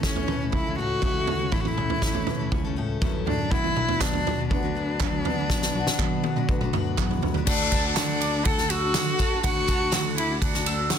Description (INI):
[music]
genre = indie folk with a building arrangement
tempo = 121 BPM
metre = 4/4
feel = straight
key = D major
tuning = A4 = 440 Hz
[part]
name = dark cello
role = melody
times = 0.0-11.0 s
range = C#4 to A4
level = -28 LUFS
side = left 2 dB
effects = none
[part]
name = fingerpicked steel-string acoustic guitar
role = accompaniment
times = 0.0-9.4 s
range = F#2 to A4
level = -34 LUFS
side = left 5 dB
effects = none
[part]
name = picked steel-string acoustic guitar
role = accompaniment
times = 0.0-11.0 s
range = A2 to B4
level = -34 LUFS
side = left 8 dB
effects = none
[part]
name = picked electric bass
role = bass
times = 0.0-11.0 s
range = A1 to D3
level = -32 LUFS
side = equal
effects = none
[part]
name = natural country drum kit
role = drums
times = 0.0-11.0 s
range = crash cymbal, kick drum, ride cymbal, snare drum, toms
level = -25 LUFS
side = right 1 dB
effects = soft clipping on snare
[part]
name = group handclap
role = percussion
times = 4.0-11.0 s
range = none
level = -32 LUFS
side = right 15 dB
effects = none
[part]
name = mandolin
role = arpeggios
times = 7.5-11.0 s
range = F#5 to E6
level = -31 LUFS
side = right 8 dB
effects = none
[part]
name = tambourine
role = percussion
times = 7.5-11.0 s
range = none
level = -38 LUFS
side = left 17 dB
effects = none
[sound]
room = small room ambience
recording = dense, heavily limited modern master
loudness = -22 LUFS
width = side -8 dB against mid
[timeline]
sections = 0.0-7.5 A section; 7.5-11.0 B section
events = drum fill 5.5-7.5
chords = 0.0 A; 3.5 Bm; 7.5 D